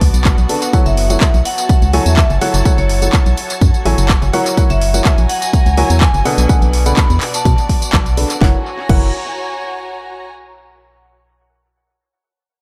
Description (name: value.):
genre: piano house.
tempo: 125 BPM.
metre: 4/4.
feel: straight.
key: F# minor.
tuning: A4 = 440 Hz.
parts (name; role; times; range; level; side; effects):
organ-like FM bass; bass; 0.0-9.1 s; F#1 to B2; -17 LUFS; equal; tube saturation, sidechain pumping.
electronic kick drum; drums; 0.0-9.0 s; none; -15 LUFS; equal; overdrive, studio reverb.
house drum kit; drums; 0.0-9.0 s; crash cymbal, handclaps, hi-hat, snare drum, tambourine; -24 LUFS; equal; overdrive, studio reverb, tape echo.
rich studio string section; texture; 0.0-10.3 s; B3 to A#5; -28 LUFS; equal; sidechain pumping.
warm upright piano; riff; 0.5-9.1 s; B2 to A5; -22 LUFS; equal; sidechain pumping, tape echo.
vibraphone with hard mallets; melody; 0.9-7.5 s; C#5 to B5; -25 LUFS; equal; tape echo.
room: light reverb.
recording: echo-heavy mix.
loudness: -14 LUFS.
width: mono.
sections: 0.0-8.4 A section; 8.4-10.3 B section.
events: drop 0.0-8.4.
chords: 0.0 Bm7; 0.7 F#m7; 4.3 F#7; 6.3 Bm7; 8.4 F#7.